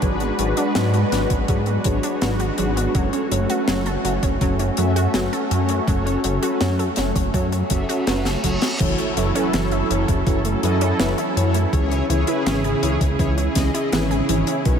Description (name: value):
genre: synthwave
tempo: 82 BPM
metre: 4/4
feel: straight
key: F# minor, F# dorian from 8.8 s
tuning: A4 = 437 Hz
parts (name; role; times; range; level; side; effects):
- lush unison pad; sustained chords; 0.0-14.8 s; C#3 to B4; -24 LUFS; equal; chorus, phaser, sidechain pumping
- wide unison pluck; arpeggios; 0.0-14.8 s; D#3 to A4; -26 LUFS; right 2 dB; ping-pong delay
- mellow synth brass; stabs; 0.0-14.8 s; C#4 to E5; -26 LUFS; left 2 dB; chorus, ping-pong delay
- wide detuned saw bass; bass; 0.0-14.8 s; F#1 to G#2; -22 LUFS; equal; chorus
- electronic kick drum; drums; 0.0-14.8 s; none; -22 LUFS; equal; overdrive
- tight funk drum kit; drums; 0.0-14.8 s; crash cymbal, hi-hat, snare drum; -28 LUFS; left 2 dB; none
- reverse cymbal and impact; sound effects; 7.7-11.7 s; none; -33 LUFS; right 1 dB; none
room: moderate huge ambient reverb, RT60 8.3 s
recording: dreamy mix soaked in reverb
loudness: -18 LUFS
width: side -7 dB against mid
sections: 0.0-8.8 A section; 8.8-14.8 B section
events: reverse cymbal 7.7-8.8; drum fill 8.3-8.8; impact 8.8-11.7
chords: 0.0 G#m7b5; 3.0 F#m; 8.8 F#m7; 11.7 C#m